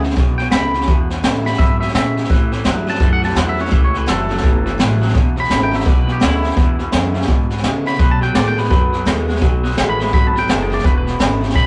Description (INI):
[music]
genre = rockabilly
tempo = 169 BPM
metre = 4/4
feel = swing 62% on 8ths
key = E mixolydian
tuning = A4 = 440 Hz
[part]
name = twangy electric guitar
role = melody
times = 0.0-11.7 s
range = E4 to B5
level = -24 LUFS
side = equal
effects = spring reverb
[part]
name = picked steel-string acoustic guitar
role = accompaniment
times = 0.0-11.7 s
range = E2 to F#4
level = -30 LUFS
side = equal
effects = none
[part]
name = electric guitar through a small old amp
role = riff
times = 0.0-11.7 s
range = E2 to G#3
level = -24 LUFS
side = equal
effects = none
[part]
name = upright bass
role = bass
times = 0.0-11.7 s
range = E1 to C#3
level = -23 LUFS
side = equal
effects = none
[part]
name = jazz brush drum kit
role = drums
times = 0.0-11.7 s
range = hi-hat, kick drum, snare drum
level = -19 LUFS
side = equal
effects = none
[sound]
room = moderate small room reverb, RT60 0.6 s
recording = rough rehearsal-room recording, nothing above 10.5 kHz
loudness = -16 LUFS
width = mono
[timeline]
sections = 0.0-11.7 A section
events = clean electric guitar solo 0.0-11.7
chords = 0.0 E7; 2.3 A7; 5.1 E7; 8.0 B7; 10.8 E7